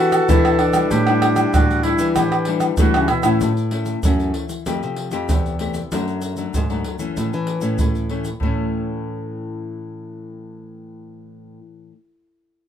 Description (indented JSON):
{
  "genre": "samba and choro",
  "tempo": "96 BPM",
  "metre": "4/4",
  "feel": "straight",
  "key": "A major from 3.4 s",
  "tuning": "A4 = 445 Hz",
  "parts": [
    { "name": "breathy alto saxophone", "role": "melody", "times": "0.0-2.8 s", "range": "D4 to F#4", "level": "-22 LUFS", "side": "left 1 dB", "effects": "none" },
    { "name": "bright baroque flute", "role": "second line", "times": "0.0-3.4 s", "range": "E4 to A4", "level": "-22 LUFS", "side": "right 6 dB", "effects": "none" },
    { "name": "nylon-string guitar", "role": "accompaniment", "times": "0.0-12.0 s", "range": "F#2 to G4", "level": "-25 LUFS", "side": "left 7 dB", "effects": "none" },
    { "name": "nylon-string guitar", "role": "bass", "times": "0.0-11.6 s", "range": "E2 to A3", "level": "-23 LUFS", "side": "equal", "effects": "none" },
    { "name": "tube shaker, pandeiro, tamborim and surdo", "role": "percussion", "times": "0.1-8.6 s", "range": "none", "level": "-21 LUFS", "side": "right 1 dB", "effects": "none" }
  ],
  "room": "light reverb",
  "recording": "minimal, uncompressed stereo recording",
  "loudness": "-17 LUFS",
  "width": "side -9 dB against mid",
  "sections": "0.0-3.4 A section; 3.4-8.4 B section; 8.4-10.9 C section",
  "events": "none",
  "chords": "0.0 Em7; 0.9 A7sus4; 3.4 A; 4.7 Fadd9; 5.9 D/F#; 7.2 A"
}